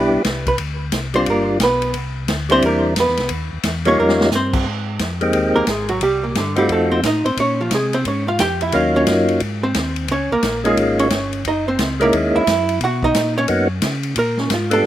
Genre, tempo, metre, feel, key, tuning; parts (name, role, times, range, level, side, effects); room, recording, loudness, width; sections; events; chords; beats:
soul jazz organ trio; 177 BPM; 4/4; swing 64% on 8ths; Ab major from 4.7 s; A4 = 440 Hz
percussive tonewheel organ; melody; 0.0-14.9 s; Gb3 to G4; -17 LUFS; equal; slow rotary speaker
archtop guitar, miked and amplified; accompaniment; 0.0-14.9 s; Bb2 to G5; -18 LUFS; right 2 dB; slapback echo
mellow tonewheel organ; bass; 0.0-14.8 s; Gb1 to C#3; -24 LUFS; left 1 dB; overdrive, chorus vibrato, slow rotary speaker
swinging big-band drum kit; drums; 0.2-14.9 s; crash cymbal, hi-hat, kick drum, ride cymbal, snare drum; -24 LUFS; left 1 dB
little or no reverb; recorded outdoors, with no room sound; -16 LUFS; side -12 dB against mid
0.0-4.7 A section; 4.7-14.9 A section
hollow-body jazz guitar solo 0.0-14.9; drum fill 4.0-4.3
0.0 Em7; 0.6 Dm7; 1.3 G7; 1.9 Cmaj9; 3.3 Eb7; 4.7 Abmaj7; 6.0 Cm9; 6.7 F7b9; 7.4 Bbm9; 8.7 Ebm9; 9.4 Ab; 10.1 Db6; 11.4 Gb13; 12.8 Bmaj9; 14.2 Bb5
0.25 | 0.59 0.93 1.27 1.61 | 1.95 2.29 2.63 2.97 | 3.31 3.65 3.98 4.32 | 4.66 5.00 5.34 5.68 | 6.02 6.36 6.70 7.04 | 7.38 7.72 8.06 8.40 | 8.74 9.07 9.41 9.75 | 10.09 10.43 10.77 11.11 | 11.45 11.79 12.13 12.46 | 12.80 13.14 13.48 13.82 | 14.16 14.50 14.84